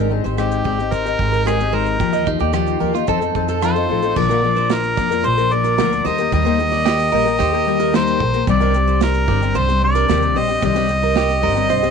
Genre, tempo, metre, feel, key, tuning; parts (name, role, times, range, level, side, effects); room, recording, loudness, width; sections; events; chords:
acoustic pop; 111 BPM; 4/4; straight; Bb major; A4 = 440 Hz
clean electric guitar; second line; 0.0-7.8, 11.2-11.9 s; D4 to C5; -24 LUFS; right 16 dB
fingerpicked twelve-string acoustic guitar; accompaniment; 0.0-11.9 s; Bb2 to Bb4; -20 LUFS; left 15 dB; wide subtle chorus
fingerpicked steel-string acoustic guitar; arpeggios; 0.0-11.8 s; A4 to Eb5; -26 LUFS; right 15 dB
upright bass; bass; 0.0-11.9 s; G1 to F2; -21 LUFS; right 2 dB
modern studio drum kit; drums; 0.2-11.9 s; crash cymbal, kick drum, rim click, shaker, snare drum; -25 LUFS; right 9 dB
mellow harmonica; melody; 0.4-11.9 s; G4 to Eb5; -19 LUFS; equal
small room ambience; 1960s-style stereo with parts hard left and right; -15 LUFS; side -6 dB against mid
0.0-4.2 A section; 4.2-11.9 B section
0.0 Abmaj7; 2.0 Ebadd9; 3.1 F7; 4.2 Bb; 6.1 Eb; 8.5 Cmadd9